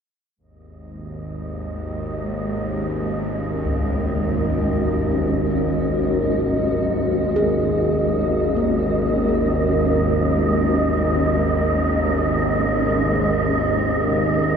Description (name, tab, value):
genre	dark ambient drone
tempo	free time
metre	none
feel	none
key	unclear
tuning	A4 = 439 Hz
part	granular cloud pad	sustained chords	1.4-14.6 s	G#3 to A#4	-23 LUFS	right 1 dB	built-in reverb
part	bowed-like drone	drone	0.8-14.6 s	G#1 to D#2	-22 LUFS	equal	built-in reverb
part	wind-like tuned noise texture	texture	1.2-14.6 s	D#5	-26 LUFS	right 2 dB	built-in reverb
part	gamelan-type bossed gongs	arpeggios	3.6-14.6 s	C#2 to G#4	-27 LUFS	left 2 dB	ping-pong delay
room	wet cathedral reverb, RT60 5.5 s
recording	none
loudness	-18 LUFS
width	side -7 dB against mid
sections	0.4-14.6 A section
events	none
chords	0.4 D#m/G#